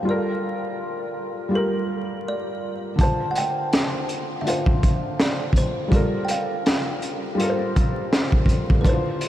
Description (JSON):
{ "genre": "lo-fi hip hop", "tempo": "82 BPM", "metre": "4/4", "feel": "swing 61% on 16ths", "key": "G minor", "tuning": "A4 = 440 Hz", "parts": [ { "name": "kalimba", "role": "melody", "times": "0.0-9.3 s", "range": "Bb4 to A5", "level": "-29 LUFS", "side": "right 2 dB", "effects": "low-pass filter, diffuse ambient delay" }, { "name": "felt-muted upright piano", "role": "accompaniment", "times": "0.0-9.3 s", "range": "D3 to C5", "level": "-26 LUFS", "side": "left 1 dB", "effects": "low-pass filter" }, { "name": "crunchy breakbeat drum kit", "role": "drums", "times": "3.0-9.3 s", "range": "hi-hat, kick drum, snare drum", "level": "-21 LUFS", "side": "equal", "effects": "vintage 12-bit sampler grit" } ], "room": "moderate huge ambient reverb, RT60 7.4 s", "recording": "dreamy mix soaked in reverb, vinyl crackle", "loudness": "-20 LUFS", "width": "side -12 dB against mid", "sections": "0.0-9.3 A section", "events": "none", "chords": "0.1 Gm9; 3.0 Dm7; 5.9 Gm9", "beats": "| 0.07 0.80 1.53 2.26 | 2.99 3.73 4.46 5.19 | 5.92 6.65 7.38 8.12 | 8.85" }